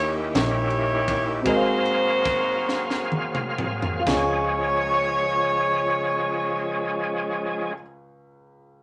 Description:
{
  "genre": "slow gospel",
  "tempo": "40-57 BPM (dotted quarters)",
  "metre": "6/8",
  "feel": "straight",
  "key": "Db major",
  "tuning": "A4 = 440 Hz",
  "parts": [
    { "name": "bright saxophone section", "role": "melody", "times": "0.0-7.8 s", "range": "Eb4 to Db5", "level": "-26 LUFS", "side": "equal", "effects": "none" },
    { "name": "dark upright piano", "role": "accompaniment", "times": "0.0-8.8 s", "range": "Db2 to F5", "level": "-31 LUFS", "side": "equal", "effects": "none" },
    { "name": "overdriven tonewheel organ", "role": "sustained chords", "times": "0.0-7.7 s", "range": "Eb3 to F5", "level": "-30 LUFS", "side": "equal", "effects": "slow rotary speaker, chorus vibrato" },
    { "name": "fingered electric bass", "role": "bass", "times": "0.0-7.7 s", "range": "Ab1 to Eb2", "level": "-34 LUFS", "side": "equal", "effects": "none" },
    { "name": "crisp fusion drum kit", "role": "drums", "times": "0.4-4.3 s", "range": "kick drum, ride cymbal, snare drum, splash cymbal, toms", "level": "-31 LUFS", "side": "equal", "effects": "none" }
  ],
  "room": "wet studio reverb, RT60 0.5 s",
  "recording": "none",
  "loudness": "-24 LUFS",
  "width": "mono",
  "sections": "0.0-4.1 A section; 4.1-8.8 B section",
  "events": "slowing down 0.0-4.1; drum fill 2.7-4.1",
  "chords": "0.0 Eb7b9; 1.5 Ab13; 4.1 Db"
}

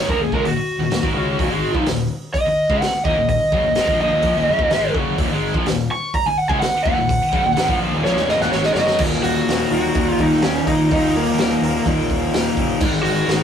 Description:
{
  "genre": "hard rock",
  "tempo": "126 BPM",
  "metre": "4/4",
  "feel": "straight",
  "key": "Eb minor",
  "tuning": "A4 = 440 Hz",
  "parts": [
    { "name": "lead guitar through a small cranked amp", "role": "melody", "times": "0.0-13.4 s", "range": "Bb3 to Db6", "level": "-19 LUFS", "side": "right 1 dB", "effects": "overdrive" },
    { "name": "overdriven electric guitar", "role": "riff", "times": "0.0-13.4 s", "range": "Eb2 to Db4", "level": "-22 LUFS", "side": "left 4 dB", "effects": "none" },
    { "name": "scooped high-gain guitar", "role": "riff", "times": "0.0-9.0 s", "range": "Eb2 to Db4", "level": "-27 LUFS", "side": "right 6 dB", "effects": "distortion" },
    { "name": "fuzz fingered electric bass", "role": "bass", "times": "0.0-13.4 s", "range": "Eb1 to Db2", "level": "-27 LUFS", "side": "equal", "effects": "overdrive" },
    { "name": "raw garage drum kit", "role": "drums", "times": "0.1-13.4 s", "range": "crash cymbal, hi-hat, kick drum, snare drum", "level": "-23 LUFS", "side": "equal", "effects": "none" },
    { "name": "overdriven semi-hollow guitar", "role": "riff", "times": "9.0-13.4 s", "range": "Eb2 to Ab3", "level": "-24 LUFS", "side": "right 1 dB", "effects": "none" }
  ],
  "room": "moderate studio reverb, RT60 0.5 s",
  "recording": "rough rehearsal-room recording",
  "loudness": "-16 LUFS",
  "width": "side -8 dB against mid",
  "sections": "0.0-9.0 A section; 9.0-13.4 B section",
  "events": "lead electric guitar solo 0.0-9.0; drum fill 8.0-9.0",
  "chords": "0.0 Ebm; 12.8 Ab5"
}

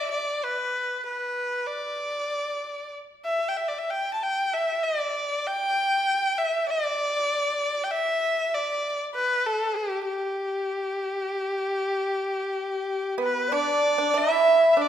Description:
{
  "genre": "chinese traditional, Chinese chamber ensemble",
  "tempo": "96 BPM",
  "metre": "4/4",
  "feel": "rubato",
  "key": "G gong mode",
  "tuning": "A4 = 439 Hz",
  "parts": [
    { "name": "clear erhu", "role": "melody", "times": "0.0-14.9 s", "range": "G4 to A5", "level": "-24 LUFS", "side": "equal", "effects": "none" },
    { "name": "mellow large dizi", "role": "second line", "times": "13.2-14.9 s", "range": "B4 to E5", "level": "-24 LUFS", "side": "left 1 dB", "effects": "none" },
    { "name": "pipa", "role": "second line", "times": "13.2-14.9 s", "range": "B3 to E4", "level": "-26 LUFS", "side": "right 6 dB", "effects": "none" }
  ],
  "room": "wet recital hall reverb, RT60 1.7 s",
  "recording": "minimal, uncompressed stereo recording",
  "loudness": "-24 LUFS",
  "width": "side -10 dB against mid",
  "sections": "0.0-14.2 A section",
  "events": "none",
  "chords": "none"
}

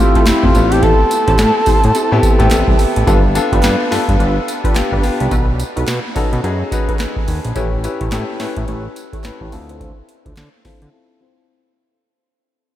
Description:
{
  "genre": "R&B, new jack swing",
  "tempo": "107 BPM",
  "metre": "4/4",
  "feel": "swing 61% on 16ths",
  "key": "A minor",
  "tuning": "A4 = 438 Hz",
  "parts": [
    { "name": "warm duduk", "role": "melody", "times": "0.0-2.8 s", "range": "E4 to A4", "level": "-18 LUFS", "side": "equal", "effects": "analog delay" },
    { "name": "clear concert grand piano", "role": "accompaniment", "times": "0.0-12.1 s", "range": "A3 to C6", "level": "-19 LUFS", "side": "left 2 dB", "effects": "low-pass filter" },
    { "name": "funky polysynth comp", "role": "stabs", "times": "0.2-10.8 s", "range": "C4 to C#5", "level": "-23 LUFS", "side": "right 1 dB", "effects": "chorus, low-pass filter" },
    { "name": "booming analog drum machine", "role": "drums", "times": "0.2-10.9 s", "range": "hi-hat, kick drum, snare drum, tambourine", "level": "-17 LUFS", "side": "equal", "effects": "none" },
    { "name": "fat analog bass", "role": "bass", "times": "0.3-10.9 s", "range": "F1 to D3", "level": "-18 LUFS", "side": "equal", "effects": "none" },
    { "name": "group handclap", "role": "percussion", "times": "0.3-10.5 s", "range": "none", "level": "-38 LUFS", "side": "right 5 dB", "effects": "none" }
  ],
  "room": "moderate huge ambient reverb, RT60 7.8 s",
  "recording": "dreamy mix soaked in reverb",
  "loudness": "-12 LUFS",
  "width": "side -12 dB against mid",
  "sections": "0.0-3.1 A section; 3.1-12.0 B section",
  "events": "grand piano fill 1.4-3.1; fade-out 3.1-12.0; filter sweep 3.1-12.0; break 10.9-12.0",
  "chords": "0.0 Fmaj7; 0.6 Am7; 3.1 G7; 5.3 B7; 7.6 A7; 9.5 Dm7"
}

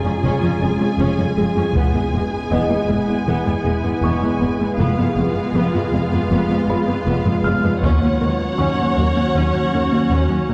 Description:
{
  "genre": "cinematic, hybrid orchestral and electronic film score",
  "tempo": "79 BPM",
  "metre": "4/4",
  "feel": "straight",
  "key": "Eb minor",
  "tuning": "A4 = 438 Hz",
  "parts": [
    { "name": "rich studio violin section", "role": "melody", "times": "0.0-10.5 s", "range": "F5 to Ab5", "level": "-32 LUFS", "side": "equal", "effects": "none" },
    { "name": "warm symphonic viola section", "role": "accompaniment", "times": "0.0-10.5 s", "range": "Ab3 to Db5", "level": "-26 LUFS", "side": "equal", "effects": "none" },
    { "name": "glassy FM pad", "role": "sustained chords", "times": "0.0-10.5 s", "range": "Gb3 to Db5", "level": "-26 LUFS", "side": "equal", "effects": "ensemble chorus, built-in reverb" },
    { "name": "rich symphonic cello section", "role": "bass", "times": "0.0-10.5 s", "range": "Eb2 to F2", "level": "-26 LUFS", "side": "equal", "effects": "none" },
    { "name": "warm grand piano", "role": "texture", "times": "0.0-10.5 s", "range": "Bb4 to F6", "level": "-32 LUFS", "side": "equal", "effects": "none" },
    { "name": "thumb-piano-like synth pluck", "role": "arpeggios", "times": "0.1-10.5 s", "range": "Db3 to F4", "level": "-27 LUFS", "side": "equal", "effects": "chorus" },
    { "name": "warm symphonic double bass section", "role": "bass", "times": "0.2-10.5 s", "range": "E1 to Eb2", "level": "-25 LUFS", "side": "equal", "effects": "none" },
    { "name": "solo taiko drums", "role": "drums", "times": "1.8-3.2, 7.8-9.3 s", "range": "none", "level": "-25 LUFS", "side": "equal", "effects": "none" }
  ],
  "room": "wet scoring stage reverb, RT60 1.8 s",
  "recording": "heard from further back in the room",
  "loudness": "-18 LUFS",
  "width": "mono",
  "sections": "0.0-10.5 A section",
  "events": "build-up 0.0-10.5",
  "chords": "0.0 Db/F; 1.8 E; 4.8 Fdim; 7.8 Ebm7"
}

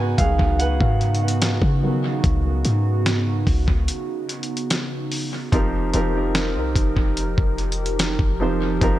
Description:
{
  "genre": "contemporary R&B",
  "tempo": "73 BPM",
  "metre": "4/4",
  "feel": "straight",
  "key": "unclear",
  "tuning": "A4 = 437 Hz",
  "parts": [
    { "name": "dark grand piano", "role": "accompaniment", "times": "0.0-9.0 s", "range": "Eb3 to Ab5", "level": "-26 LUFS", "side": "right 1 dB", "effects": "dub echo" },
    { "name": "hollow soft pad", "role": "sustained chords", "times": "0.0-9.0 s", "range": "Db3 to Bb4", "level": "-27 LUFS", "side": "right 2 dB", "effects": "chorus, sidechain pumping" },
    { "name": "clean 808-style bass", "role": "bass", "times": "0.0-9.0 s", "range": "F1 to Db3", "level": "-22 LUFS", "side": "equal", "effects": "none" },
    { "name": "dusty soul sampler-style drum kit", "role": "drums", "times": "0.2-9.0 s", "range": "hi-hat, kick drum, snare drum", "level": "-22 LUFS", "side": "equal", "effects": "dub echo" }
  ],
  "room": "little or no reverb",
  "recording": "echo-heavy mix",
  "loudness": "-19 LUFS",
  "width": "side -14 dB against mid",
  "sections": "0.0-5.5 A section; 5.5-9.0 A section",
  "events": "grand piano solo 0.0-5.5; break 3.9-5.5",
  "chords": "0.0 Db9sus4; 5.5 F9sus4"
}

